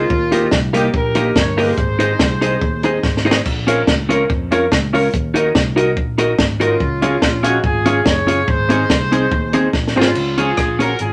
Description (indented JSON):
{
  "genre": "ska",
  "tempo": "143 BPM",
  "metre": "4/4",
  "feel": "straight",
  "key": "Db major",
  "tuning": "A4 = 440 Hz",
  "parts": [
    { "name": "warm horn section", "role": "melody", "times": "0.0-3.2, 6.6-11.1 s", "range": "Bb3 to Db5", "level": "-23 LUFS", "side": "equal", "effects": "none" },
    { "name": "clean electric guitar", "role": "accompaniment", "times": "0.0-10.9 s", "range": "C4 to Eb5", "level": "-20 LUFS", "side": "equal", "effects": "dub echo" },
    { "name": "warm upright piano", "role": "stabs", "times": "0.0-10.1 s", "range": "Bb3 to Bb4", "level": "-24 LUFS", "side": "equal", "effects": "none" },
    { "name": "fingered electric bass", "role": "bass", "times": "0.0-11.1 s", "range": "Gb1 to F2", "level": "-25 LUFS", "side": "equal", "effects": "none" },
    { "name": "compact cocktail drum kit", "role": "drums", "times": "0.1-11.1 s", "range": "crash cymbal, hi-hat, kick drum, rim click, snare drum", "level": "-20 LUFS", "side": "equal", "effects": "none" }
  ],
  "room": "wet studio reverb, RT60 0.5 s",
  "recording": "none",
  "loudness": "-16 LUFS",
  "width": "mono",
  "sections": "0.0-10.2 A section",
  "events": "drum fill 3.0-3.5, 9.7-10.2",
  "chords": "0.1 Eb; 1.8 Ab; 3.5 Bbm; 5.1 Ebm; 6.8 Db; 8.5 Ab; 10.2 Db"
}